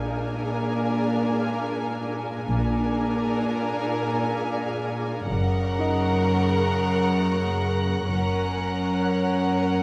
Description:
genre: cinematic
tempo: 64 BPM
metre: 3/4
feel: straight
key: unclear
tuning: A4 = 441 Hz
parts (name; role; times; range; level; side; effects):
- warm studio violin section; melody; 0.0-9.8 s; Gb5 to Ab5; -36 LUFS; equal; none
- warm chamber violin section; second line; 0.0-9.8 s; Bb4; -32 LUFS; equal; none
- warm symphonic viola section; accompaniment; 0.0-9.8 s; Db3 to D4; -33 LUFS; equal; none
- flickering grainy texture; sustained chords; 0.0-9.8 s; Ab4 to Db6; -35 LUFS; equal; built-in reverb
- clear studio cello section; bass; 0.0-9.8 s; Gb2 to Bb2; -28 LUFS; equal; none
- warm chamber double bass section; bass; 0.0-9.0 s; Gb1 to Bb1; -31 LUFS; equal; none
- felt-muted upright piano; texture; 0.0-9.8 s; Eb4 to G6; -40 LUFS; equal; none
- warm chamber violin section; texture; 5.3-9.8 s; Gb6 to Bb6; -42 LUFS; equal; none
room: light reverb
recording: close, detailed microphones, vinyl crackle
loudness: -25 LUFS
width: mono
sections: 0.0-9.8 A section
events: none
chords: 0.0 Bb7; 5.3 Gb

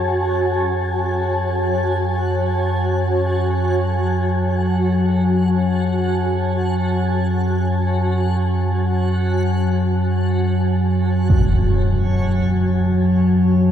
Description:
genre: dark ambient drone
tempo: free time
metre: none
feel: none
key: F# minor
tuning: A4 = 437 Hz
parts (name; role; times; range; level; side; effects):
- granular cloud pad; sustained chords; 0.0-13.7 s; F#4 to A5; -22 LUFS; equal; built-in reverb
- deep rumbling drone; drone; 0.0-13.7 s; F#2 to F#3; -18 LUFS; equal; built-in reverb
- backwards swelling texture; texture; 0.0-13.7 s; C#4 to F#5; -33 LUFS; right 1 dB; built-in reverb
- impact; percussion; 11.3-11.5 s; none; -21 LUFS; equal; low-pass filter on sfx
room: wet cathedral reverb, RT60 5.5 s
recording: in a vast, echoing space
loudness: -16 LUFS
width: side -9 dB against mid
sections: 0.0-13.7 A section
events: fade-in on synth texture 0.0-13.7; fade-out on ambient pad 0.0-13.7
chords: 0.0 F#madd9

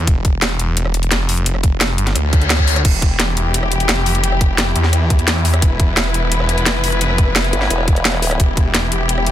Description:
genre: dark technical drum and bass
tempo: 173 BPM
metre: 4/4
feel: straight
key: E phrygian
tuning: A4 = 440 Hz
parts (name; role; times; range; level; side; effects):
- snarling distorted saw bass; bass; 0.0-9.3 s; E1 to E2; -17 LUFS; equal; distortion, overdrive
- drum and bass drum kit; drums; 0.1-9.3 s; crash cymbal, hi-hat, rim click, snare drum; -18 LUFS; equal; overdrive
- electronic kick drum; drums; 0.1-8.6 s; none; -14 LUFS; equal; none
- reverse cymbal; sound effects; 2.2-2.8 s; none; -22 LUFS; left 5 dB; none
- dark symphonic string section; sustained chords; 2.8-9.3 s; E3 to B4; -21 LUFS; left 3 dB; sidechain pumping
- formant-sweep wobble bass; bass; 7.5-8.4 s; E1 to G1; -18 LUFS; equal; chorus
room: digital ambience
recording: dense, heavily limited modern master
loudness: -13 LUFS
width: side -12 dB against mid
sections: 0.0-9.3 A section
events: reverse cymbal 2.2-2.8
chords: 0.0 Em

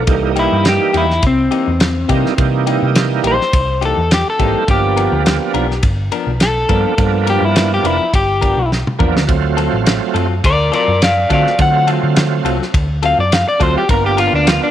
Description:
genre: straight-eighth soul blues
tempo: 104 BPM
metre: 4/4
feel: swing 55% on 16ths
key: unclear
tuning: A4 = 441 Hz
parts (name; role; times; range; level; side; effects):
- electric guitar at the edge of break-up; melody; 0.0-14.7 s; C4 to F#5; -16 LUFS; left 2 dB; none
- bright tonewheel organ; accompaniment; 0.0-14.7 s; E3 to F#4; -19 LUFS; right 11 dB; slow rotary speaker, overdrive, chorus vibrato
- hollow-body short-scale picked electric bass; bass; 0.0-14.6 s; F1 to D3; -18 LUFS; equal; none
- warm soul drum kit; drums; 0.1-14.6 s; kick drum, ride cymbal, snare drum, toms; -18 LUFS; equal; none
- direct-recorded clean electric guitar; stabs; 0.4-14.4 s; E3 to A#4; -24 LUFS; left 9 dB; spring reverb
room: light reverb, small room ambience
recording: 1960s-style stereo with parts hard left and right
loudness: -12 LUFS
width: side -11 dB against mid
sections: 0.0-14.7 A section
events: clean electric guitar solo 0.0-14.7; drum fill 8.7-9.3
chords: 0.1 C7#9; 4.7 G7#9; 9.3 D7#9; 13.9 G7#9

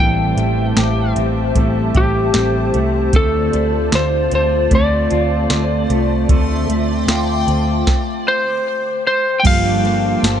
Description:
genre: dream pop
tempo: 76 BPM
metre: 4/4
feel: straight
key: D minor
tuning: A4 = 440 Hz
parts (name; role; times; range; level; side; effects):
- electric slide guitar; melody; 0.0-10.4 s; G4 to G5; -19 LUFS; left 1 dB; ping-pong delay
- mellow electric guitar; accompaniment; 0.0-10.4 s; A2 to A4; -24 LUFS; right 5 dB; harmonic tremolo, analog chorus
- hollow soft pad; sustained chords; 0.0-10.4 s; Bb3 to A5; -25 LUFS; left 1 dB; ensemble chorus
- electric guitar at the edge of break-up; arpeggios; 0.0-10.4 s; E3 to A4; -22 LUFS; left 2 dB; wide subtle chorus, ping-pong delay
- vintage muted picked electric bass; bass; 0.0-10.4 s; G1 to D2; -20 LUFS; equal; none
- soft vintage rhythm box; drums; 0.4-10.4 s; crash cymbal, hi-hat, kick drum, ride cymbal, snare drum, tambourine; -17 LUFS; equal; none
room: light reverb, digital ambience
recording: nothing above 10.4 kHz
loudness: -14 LUFS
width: side -9 dB against mid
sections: 0.0-9.4 A section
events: none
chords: 0.0 Am7; 3.1 Dm7; 9.4 Gm9

